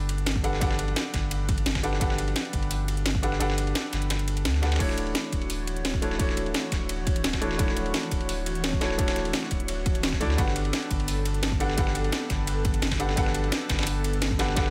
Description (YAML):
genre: liquid drum and bass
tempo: 172 BPM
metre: 4/4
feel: straight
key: unclear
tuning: A4 = 440 Hz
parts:
  - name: felt-muted upright piano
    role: accompaniment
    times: 0.0-14.7 s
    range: A3 to F#5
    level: -33 LUFS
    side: equal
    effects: digital delay
  - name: warm sub bass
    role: bass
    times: 0.0-14.7 s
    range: D1 to D2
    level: -32 LUFS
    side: equal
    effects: none
  - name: drum and bass drum kit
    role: drums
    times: 0.1-14.6 s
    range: crash cymbal, hi-hat, snare drum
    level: -33 LUFS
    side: equal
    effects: overdrive
  - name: dusty soul sampler-style drum kit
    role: drums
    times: 0.1-14.7 s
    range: hi-hat, ride cymbal, snare drum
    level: -36 LUFS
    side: equal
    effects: high-pass filter on cymbals, high-pass filter on snare, high-pass filter on hats
  - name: electronic kick drum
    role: drums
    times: 0.4-14.6 s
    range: none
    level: -31 LUFS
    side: equal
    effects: none
  - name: airy breathy pad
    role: sustained chords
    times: 4.8-14.7 s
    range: E3 to C#5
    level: -39 LUFS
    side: equal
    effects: chorus, phaser, sidechain pumping
room: digital ambience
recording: none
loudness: -27 LUFS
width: mono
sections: 0.0-14.7 A section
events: kick drops out 3.4-4.8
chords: 0.0 Gmaj9; 4.8 Dmaj9; 10.4 Gmaj9